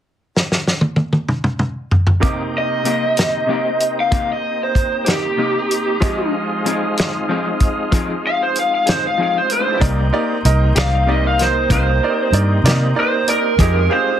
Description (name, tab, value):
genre	slow blues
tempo	63 BPM (dotted quarters)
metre	12/8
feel	straight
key	C minor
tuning	A4 = 442 Hz
part	warm soul drum kit	drums	0.4-13.7 s	hi-hat, kick drum, snare drum, toms	-17 LUFS	equal	none
part	bright grand piano	accompaniment	2.2-14.1 s	C3 to D6	-25 LUFS	right 5 dB	none
part	electric guitar through a small old amp	accompaniment	2.2-14.1 s	C3 to Ab4	-23 LUFS	left 4 dB	tremolo
part	tonewheel organ	sustained chords	2.2-14.2 s	Ab3 to D5	-24 LUFS	left 1 dB	chorus vibrato, lush chorus
part	lead guitar through a small cranked amp	melody	2.6-14.2 s	G4 to F5	-18 LUFS	right 1 dB	overdrive
part	vintage muted fingered electric bass	bass	9.8-13.9 s	C2 to C3	-16 LUFS	equal	none
room	light reverb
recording	dense, heavily limited modern master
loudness	-15 LUFS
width	side -10 dB against mid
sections	0.0-2.2 A section; 2.2-9.8 B section; 9.8-14.2 C section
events	drum fill 0.3-2.2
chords	0.0 N.C.; 2.2 Cm7; 6.0 Fm7; 9.8 Cm7; 13.6 Fm7